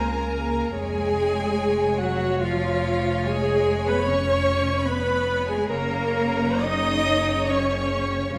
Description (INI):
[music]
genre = classical, slow romantic movement for string orchestra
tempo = 62-75 BPM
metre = 3/4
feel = rubato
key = Db major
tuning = A4 = 441 Hz
[part]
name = warm chamber violin section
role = melody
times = 0.0-8.4 s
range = Db5 to Ab5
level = -34 LUFS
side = equal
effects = none
[part]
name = rich chamber violin section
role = second line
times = 0.0-8.4 s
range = F5 to Eb6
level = -34 LUFS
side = equal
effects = none
[part]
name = rich chamber viola section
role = accompaniment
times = 0.0-8.4 s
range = F4 to Eb5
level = -26 LUFS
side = equal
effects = none
[part]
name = clear chamber cello section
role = bass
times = 0.0-8.4 s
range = F3 to Eb4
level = -31 LUFS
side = equal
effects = none
[part]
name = clear symphonic double bass section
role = bass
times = 0.0-8.4 s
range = F1 to Db2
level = -30 LUFS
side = equal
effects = none
[sound]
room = wet scoring stage reverb, RT60 1.5 s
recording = none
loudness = -23 LUFS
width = mono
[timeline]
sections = 0.0-8.4 A section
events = none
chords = 0.0 Db5; 0.7 Db/F; 3.3 Db7/F; 5.7 Gb